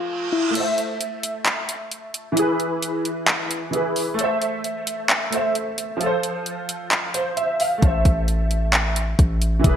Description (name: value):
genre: hip hop, trap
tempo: 132 BPM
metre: 4/4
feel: half-time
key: A harmonic minor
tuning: A4 = 441 Hz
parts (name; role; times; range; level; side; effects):
- soft electric-piano-like synth keys; melody; 0.0-0.5 s; E4 to F4; -25 LUFS; left 3 dB; chorus, low-pass filter, digital delay
- clear concert grand piano; accompaniment; 0.0-9.8 s; E3 to F5; -23 LUFS; right 1 dB; ensemble chorus, low-pass filter
- reverse cymbal; sound effects; 0.0-0.6 s; none; -30 LUFS; right 4 dB; none
- trap drum kit; drums; 0.6-9.8 s; crash cymbal, handclaps, hi-hat, kick drum; -21 LUFS; equal; overdrive, gated reverb
- hard-hitting 808-style bass; bass; 7.8-9.8 s; E1 to A1; -20 LUFS; equal; none
room: light reverb, digital ambience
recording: bright 1980s-style digital production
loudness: -20 LUFS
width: side -9 dB against mid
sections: 0.6-9.8 A section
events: reverse cymbal 0.0-0.6; kick muted 0.6-7.8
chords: 0.0 F; 0.6 Am; 2.4 E; 4.2 Am; 6.0 F; 7.8 Am